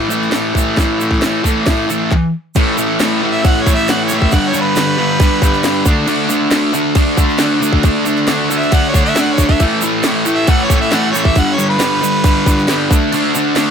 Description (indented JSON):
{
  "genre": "garage rock duo or trio",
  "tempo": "136 BPM",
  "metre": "4/4",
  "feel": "straight",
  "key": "A mixolydian",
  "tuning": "A4 = 440 Hz",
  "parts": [
    { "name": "thick fuzz guitar", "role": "riff", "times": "0.0-13.7 s", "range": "G2 to D4", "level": "-14 LUFS", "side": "equal", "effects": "distortion" },
    { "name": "egg shaker", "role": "percussion", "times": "0.1-13.7 s", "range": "none", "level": "-27 LUFS", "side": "right 8 dB", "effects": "none" },
    { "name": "garage drum kit", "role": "drums", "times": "0.3-13.7 s", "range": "crash cymbal, handclaps, hi-hat, kick drum, snare drum", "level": "-16 LUFS", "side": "equal", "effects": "none" },
    { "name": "bright harmonica", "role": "melody", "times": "3.3-5.9, 8.6-13.0 s", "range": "B4 to F#5", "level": "-18 LUFS", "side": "right 2 dB", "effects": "overdrive" }
  ],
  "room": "light reverb",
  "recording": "none",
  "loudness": "-11 LUFS",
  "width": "side -7 dB against mid",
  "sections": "0.0-2.6 A section; 2.6-13.7 B section",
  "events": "none",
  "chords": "0.0 A5; 4.3 G; 5.9 D5; 9.6 A5; 11.4 G; 12.9 D5",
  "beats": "0.33 | 0.78 1.22 1.67 2.11 | 2.55 3.00 3.44 3.88 | 4.32 4.76 5.20 5.64 | 6.08 6.52 6.96 7.40 | 7.84 8.28 8.72 9.16 | 9.60 10.04 10.48 10.92 | 11.36 11.80 12.24 12.68 | 13.12 13.57"
}